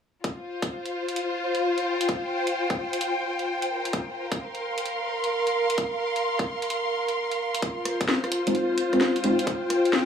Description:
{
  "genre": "UK garage, two-step garage",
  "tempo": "130 BPM",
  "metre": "4/4",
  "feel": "swing 66% on 16ths",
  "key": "unclear",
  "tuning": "A4 = 441 Hz",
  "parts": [
    { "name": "electronic kick drum", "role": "drums", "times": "0.2-9.6 s", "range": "none", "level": "-29 LUFS", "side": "left 1 dB", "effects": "overdrive, high-pass filter on kick" },
    { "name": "garage drum kit", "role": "drums", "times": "0.2-10.1 s", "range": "hi-hat, rim click, snare drum", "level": "-28 LUFS", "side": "left 1 dB", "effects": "overdrive" },
    { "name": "warm symphonic string section", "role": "texture", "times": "0.2-10.1 s", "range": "F4 to C6", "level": "-25 LUFS", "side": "equal", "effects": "sidechain pumping" },
    { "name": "deep mellow chord stab", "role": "stabs", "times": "8.5-9.3 s", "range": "Ab3 to C5", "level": "-25 LUFS", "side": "equal", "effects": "chorus, dub echo" }
  ],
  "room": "wet plate reverb, RT60 1.7 s",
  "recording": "small room ambience",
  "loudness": "-24 LUFS",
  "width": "side -7 dB against mid",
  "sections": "0.2-10.1 A section",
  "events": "none",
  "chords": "0.2 F5; 3.7 Bb5; 7.6 Fm7"
}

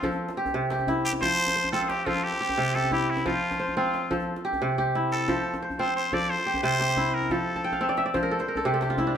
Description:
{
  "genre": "west african traditional, West African string and xylophone music",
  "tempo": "118 BPM (dotted quarters)",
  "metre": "12/8",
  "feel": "straight",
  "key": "F major",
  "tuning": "A4 = 439 Hz",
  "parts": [
    { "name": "trumpet with straight mute", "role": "melody", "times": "0.0-8.0 s", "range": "E4 to D5", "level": "-27 LUFS", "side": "equal", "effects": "none" },
    { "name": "kora", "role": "arpeggios", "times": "0.0-9.2 s", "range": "C3 to A5", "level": "-25 LUFS", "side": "right 1 dB", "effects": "none" },
    { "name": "djembe", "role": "percussion", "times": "0.0-9.1 s", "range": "none", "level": "-36 LUFS", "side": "left 2 dB", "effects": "none" }
  ],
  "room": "moderate stone room reverb, RT60 1.3 s",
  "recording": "band playing live in one room",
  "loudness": "-24 LUFS",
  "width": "side -8 dB against mid",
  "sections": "0.0-9.2 A section",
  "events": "drum fill 4.6-5.3; kora fill 7.6-9.2",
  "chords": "0.2 C; 1.2 F; 2.2 C; 3.3 F; 4.3 C; 5.3 F; 6.3 C; 7.3 F; 8.3 C"
}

